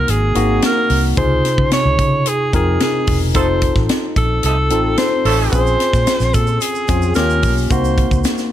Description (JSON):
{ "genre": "polished 1980s jazz-funk pop", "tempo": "110 BPM", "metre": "4/4", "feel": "straight", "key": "Db major", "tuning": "A4 = 441 Hz", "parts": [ { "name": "clear alto saxophone", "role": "melody", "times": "0.0-8.2 s", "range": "Ab4 to Db5", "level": "-19 LUFS", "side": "right 1 dB", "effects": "tape echo" }, { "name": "tine electric piano", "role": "accompaniment", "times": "0.0-8.5 s", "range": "C3 to Bb4", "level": "-20 LUFS", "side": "left 3 dB", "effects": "overdrive, wide subtle chorus" }, { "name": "vintage muted fingered electric bass", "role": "bass", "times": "0.0-8.2 s", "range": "Fb1 to Db3", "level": "-18 LUFS", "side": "equal", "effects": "none" }, { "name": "tight funk drum kit", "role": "drums", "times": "0.1-8.5 s", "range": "hi-hat, kick drum, snare drum", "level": "-19 LUFS", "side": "equal", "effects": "gated reverb" }, { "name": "warm horn section", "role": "second line", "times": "3.4-5.6 s", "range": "F3 to A4", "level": "-23 LUFS", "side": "right 5 dB", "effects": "none" }, { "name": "tube shaker", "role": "percussion", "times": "5.5-8.5 s", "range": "none", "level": "-34 LUFS", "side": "right 13 dB", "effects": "none" } ], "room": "light reverb", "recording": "none", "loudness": "-13 LUFS", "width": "side -11 dB against mid", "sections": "0.0-8.5 A section", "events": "band accent 3.3-5.5", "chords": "0.0 Ab7; 1.2 Dbmaj7; 3.3 F7; 5.5 Bbm7; 7.2 Eb7; 7.7 Cm7b5" }